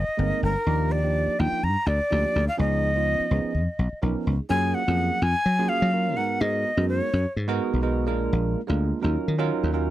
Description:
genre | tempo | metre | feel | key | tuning
electric jazz fusion | 126 BPM | 4/4 | swing 54% on 16ths | F# major from 4.5 s | A4 = 437 Hz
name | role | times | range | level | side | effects
breathy bright jazz flute | melody | 0.0-7.3 s | Bb4 to Bb5 | -25 LUFS | left 1 dB | none
dry thumbed slap bass | bass | 0.0-9.9 s | G1 to F#3 | -24 LUFS | left 1 dB | none
bell-like tine electric piano | accompaniment | 0.2-9.9 s | F3 to Bb4 | -28 LUFS | right 5 dB | wide subtle chorus
room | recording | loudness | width
little or no reverb | dry, close 1970s-style studio recording | -22 LUFS | side -14 dB against mid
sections
0.0-4.5 A section; 4.5-9.9 B section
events
none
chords
0.0 Abmaj9; 0.7 Ebmaj9; 2.6 Db9; 4.5 F#maj9; 6.2 G#m9; 8.1 A#7; 9.0 D#m9

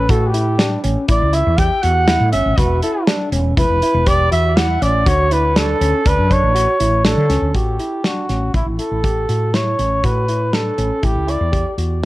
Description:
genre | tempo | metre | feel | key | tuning
progressive instrumental, band music in an uneven meter | 121 BPM | 5/4 | straight | A mixolydian | A4 = 440 Hz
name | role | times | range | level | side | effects
breathy trumpet | melody | 0.0-11.8 s | E4 to G5 | -18 LUFS | equal | plate reverb, ping-pong delay
barky tine electric piano | arpeggios | 0.0-12.0 s | C#4 to G4 | -22 LUFS | equal | medium stereo tremolo, plate reverb
woody fretless electric bass | bass | 0.0-12.1 s | E1 to D3 | -18 LUFS | equal | none
loose indie drum kit | drums | 0.1-11.9 s | hi-hat, kick drum, snare drum | -19 LUFS | equal | none
room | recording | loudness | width
light reverb | worn, warbling old tape, cassette tape, warbly pitch drift | -14 LUFS | side -18 dB against mid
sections
0.0-7.5 A section; 7.5-12.1 B section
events
trumpet solo 0.0-7.5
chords
0.0 A7(no3); 2.6 Esus2; 5.1 Dmaj7; 7.5 A5

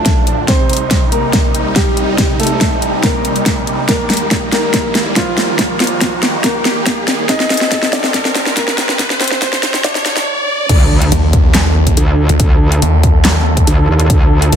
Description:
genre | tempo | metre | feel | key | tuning
heavy wobble dubstep | 141 BPM | 4/4 | half-time | D phrygian | A4 = 442 Hz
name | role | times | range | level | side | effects
warm concert grand piano | melody | 0.0-10.3 s | F3 to Eb5 | -19 LUFS | equal | low-pass filter, ping-pong delay
supersaw chords | sustained chords | 0.0-14.6 s | C2 to A4 | -20 LUFS | right 1 dB | phaser, sidechain pumping, low-pass filter
riser and impact | sound effects | 0.3-12.4 s | none | -22 LUFS | equal | none
dubstep drum kit | drums | 0.1-14.6 s | crash cymbal, handclaps, hi-hat, snare drum | -16 LUFS | equal | overdrive
electronic kick drum | drums | 0.1-14.2 s | none | -15 LUFS | equal | none
metallic wobble bass | bass | 10.7-14.5 s | D2 to Eb2 | -12 LUFS | equal | chorus, overdrive
snarling distorted saw bass | bass | 11.1-14.6 s | D2 to Eb2 | -11 LUFS | equal | distortion, overdrive
room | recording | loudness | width
light reverb | dense, heavily limited modern master, high-pass filter | -10 LUFS | side -8 dB against mid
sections
0.0-10.7 A section; 10.7-14.6 B section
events
build-up 0.0-10.7; drum fill 0.0-10.3; filter sweep 0.0-10.7; riser 0.3-10.7; drop 10.7-14.6; impact 10.7-12.4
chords
0.5 Cm; 3.9 Eb; 10.7 Dm

